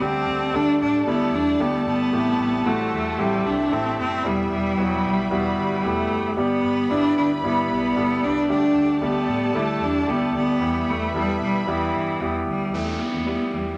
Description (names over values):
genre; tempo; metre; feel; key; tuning
piano-driven pop; 113 BPM; 4/4; straight; E minor; A4 = 440 Hz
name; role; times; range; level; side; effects
clear cello; melody; 0.0-13.8 s; E3 to D4; -25 LUFS; equal; none
warm concert grand piano; accompaniment; 0.0-13.8 s; G2 to A4; -28 LUFS; equal; none
warm studio string section; sustained chords; 0.0-12.7 s; G3 to B5; -31 LUFS; equal; none
vintage muted fingered electric bass; bass; 0.0-13.8 s; E1 to B2; -36 LUFS; equal; none
downlifter; sound effects; 12.7-13.8 s; none; -35 LUFS; equal; none
room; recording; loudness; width
moderate large studio reverb, RT60 0.8 s; none; -22 LUFS; mono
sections
0.0-12.7 A section; 12.7-13.8 B section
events
none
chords
0.0 Dsus4; 2.1 Am7; 4.3 Em; 6.4 G; 8.5 Dsus4; 10.6 Em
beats
| 0.01 0.55 1.07 1.60 | 2.13 2.66 3.19 3.72 | 4.25 4.78 5.31 5.84 | 6.37 6.90 7.43 7.96 | 8.49 9.02 9.55 10.08 | 10.61 11.14 11.68 12.21 | 12.74 13.27